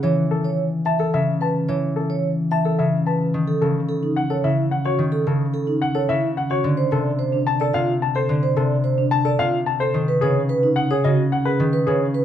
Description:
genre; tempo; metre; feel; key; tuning
classical, minimalist pattern music; 109 BPM; 3/4; straight; F# dorian; A4 = 440 Hz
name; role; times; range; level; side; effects
concert harp; accompaniment; 0.0-12.2 s; B#2 to E3; -21 LUFS; left 1 dB; none
vibraphone with soft mallets; arpeggios; 0.0-12.2 s; D4 to E5; -24 LUFS; right 5 dB; none
clear concert grand piano; melody; 0.3-12.0 s; G#4 to A5; -24 LUFS; left 5 dB; none
room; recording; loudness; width
light reverb; dark, warm production, nothing above 10.8 kHz; -18 LUFS; side -10 dB against mid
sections
0.0-3.3 A section; 3.3-12.2 A section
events
none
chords
0.0 Esus4; 3.3 F#m; 6.6 D5; 9.9 Badd9

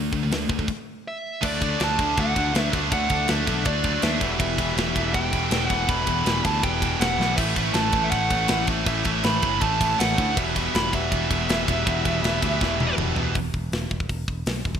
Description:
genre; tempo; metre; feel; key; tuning
heavy metal; 161 BPM; 4/4; straight; E dorian; A4 = 440 Hz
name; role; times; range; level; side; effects
high-gain distorted guitar; riff; 0.0-13.3 s; E2 to D4; -30 LUFS; left 12 dB; distortion
scooped high-gain guitar; riff; 0.0-13.3 s; E2 to D4; -28 LUFS; right 12 dB; distortion
picked electric bass; bass; 0.0-14.8 s; E1 to D#2; -28 LUFS; equal; none
tight metal drum kit; drums; 0.1-14.8 s; crash cymbal, hi-hat, kick drum, ride cymbal, snare drum, toms; -27 LUFS; equal; gated reverb
high-gain lead guitar; melody; 1.1-12.9 s; D5 to B5; -26 LUFS; right 2 dB; distortion
chamber organ, sparkling flutes; sustained chords; 1.4-13.3 s; D3 to C#5; -37 LUFS; right 2 dB; none
tight distorted guitar; riff; 1.4-13.3 s; A2 to E4; -31 LUFS; left 1 dB; distortion
room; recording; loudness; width
moderate lush hall reverb, RT60 1.8 s, small room ambience; bright 1980s-style digital production; -20 LUFS; side -8 dB against mid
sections
0.0-1.4 A section; 1.4-13.3 B section; 13.3-14.8 A section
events
stop 0.7-1.4; drum fill 7.2, 12.6-13.3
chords
0.0 D5; 1.4 D; 4.2 Em; 7.4 A; 10.4 Em; 13.3 E5

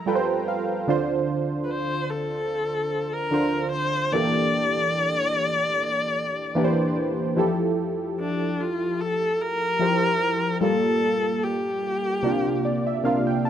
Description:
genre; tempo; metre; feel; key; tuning
R&B; 74 BPM; 4/4; swing 54% on 16ths; unclear; A4 = 440 Hz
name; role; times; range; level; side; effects
warm viola; melody; 0.0-13.1 s; D4 to D5; -24 LUFS; left 1 dB; none
warm analog keys; accompaniment; 0.0-13.5 s; C3 to Bb5; -24 LUFS; right 1 dB; chorus
room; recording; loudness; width
light reverb; none; -22 LUFS; side -9 dB against mid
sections
0.0-13.5 A section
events
synth keys fill 0.0-0.9, 12.2-13.5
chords
0.0 Gm9; 0.9 Dm7; 4.1 C13/E; 7.4 Fmaj9; 10.6 Gm9; 12.2 C9sus4

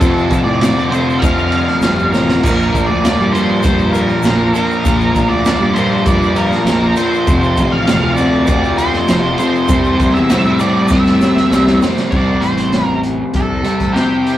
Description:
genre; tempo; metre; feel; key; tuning
classic rock; 99 BPM; 4/4; straight; F major; A4 = 436 Hz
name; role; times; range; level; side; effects
octave-fuzz lead guitar; melody; 0.0-14.4 s; G4 to F5; -19 LUFS; right 2 dB; distortion
picked plugged-in swing-style acoustic guitar; accompaniment; 0.0-14.4 s; F2 to G4; -27 LUFS; right 2 dB; none
overdriven semi-hollow guitar; riff; 0.0-14.4 s; F2 to C4; -15 LUFS; left 1 dB; none
fuzz fingered electric bass; bass; 0.0-14.4 s; F1 to D3; -19 LUFS; equal; overdrive
raw garage drum kit; drums; 0.0-14.4 s; crash cymbal, hi-hat, kick drum, ride cymbal, snare drum; -17 LUFS; equal; none
tube shaker; percussion; 0.0-12.0 s; none; -38 LUFS; left 5 dB; none
room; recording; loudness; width
wet small room ambience, RT60 0.5 s; rough rehearsal-room recording, tube saturation; -11 LUFS; side -13 dB against mid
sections
0.0-12.1 A section; 12.1-14.4 B section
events
drum fill 2.1-2.4, 10.9-12.1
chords
0.0 F; 2.4 Bb; 7.3 F; 9.7 C

